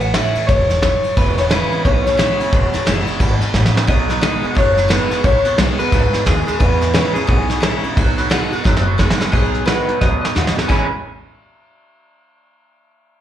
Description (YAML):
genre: rockabilly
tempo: 176 BPM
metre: 4/4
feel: swing 61% on 8ths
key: E major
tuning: A4 = 439 Hz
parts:
  - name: electric guitar through a small old amp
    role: melody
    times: 0.0-10.9 s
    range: G#4 to G#5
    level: -19 LUFS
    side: left 1 dB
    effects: slapback echo, tape echo
  - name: picked steel-string acoustic guitar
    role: accompaniment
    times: 0.0-10.9 s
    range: E2 to F#4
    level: -22 LUFS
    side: left 2 dB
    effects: slapback echo
  - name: upright bass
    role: bass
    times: 0.0-10.9 s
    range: E1 to E2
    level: -20 LUFS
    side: equal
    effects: none
  - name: soft brush drum kit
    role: drums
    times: 0.0-10.8 s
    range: crash cymbal, hi-hat, kick drum, ride cymbal, snare drum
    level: -18 LUFS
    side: equal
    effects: none
  - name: electric guitar through a small old amp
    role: riff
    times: 1.2-10.9 s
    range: E2 to B4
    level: -22 LUFS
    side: right 4 dB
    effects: analog chorus, slapback echo
room: light reverb, small room reverb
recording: live gig heard through the venue's PA, club reverb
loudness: -13 LUFS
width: side -11 dB against mid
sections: 0.0-9.3 A section; 9.3-10.7 B section; 10.7-12.1 C section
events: drum fill 3.5-3.9, 8.6-9.3, 10.0-10.7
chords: 0.0 A6; 1.2 E6; 3.9 B6; 6.6 E6; 8.0 B6; 10.7 E6